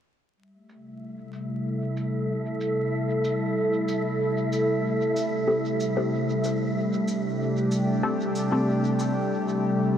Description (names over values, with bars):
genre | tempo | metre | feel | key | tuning
ambient dub | 94 BPM | 4/4 | swing 54% on 16ths | A minor | A4 = 439 Hz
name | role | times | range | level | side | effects
warbly tape-like pad | sustained chords | 0.4-10.0 s | C3 to A4 | -24 LUFS | equal | chorus, built-in reverb
wind-like tuned noise texture | texture | 1.6-9.3 s | E5 | -36 LUFS | right 2 dB | built-in reverb, wide subtle chorus
shaker | drums | 0.7-9.1 s | none | -45 LUFS | right 1 dB | low-pass filter on perc, low-pass filter on room, dub echo
filtered dub chord stab | stabs | 5.5-8.7 s | C4 to A4 | -30 LUFS | left 1 dB | phaser, cassette tape, dub echo
room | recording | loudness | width
wet huge ambient reverb, RT60 8.3 s | dreamy mix soaked in reverb, vinyl crackle | -23 LUFS | side -9 dB against mid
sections
0.4-10.0 A section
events
filter sweep on ambient pad 0.4-10.0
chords
0.4 Am7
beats
| 0.37 1.01 1.65 2.29 | 2.93 3.56 4.20 4.84 | 5.48 6.12 6.76 7.39 | 8.03 8.67 9.31 9.95